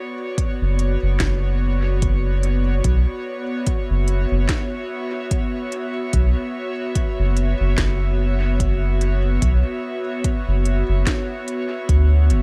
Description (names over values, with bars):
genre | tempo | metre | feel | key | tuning
ambient dub | 73 BPM | 4/4 | swing 56% on 16ths | B minor | A4 = 440 Hz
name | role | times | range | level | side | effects
airy breathy pad | sustained chords | 0.0-12.4 s | B3 to E5 | -28 LUFS | equal | chorus, vintage 12-bit sampler grit
electronic kick drum | drums | 0.4-12.1 s | none | -25 LUFS | equal | none
organic electronic drum kit | drums | 0.4-12.4 s | hi-hat, snare drum | -31 LUFS | equal | dub echo
soft dub sub bass | bass | 0.6-12.4 s | F#1 to D2 | -20 LUFS | equal | none
room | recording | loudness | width
little or no reverb | none | -21 LUFS | mono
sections
0.0-12.4 A section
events
none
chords
0.0 Bm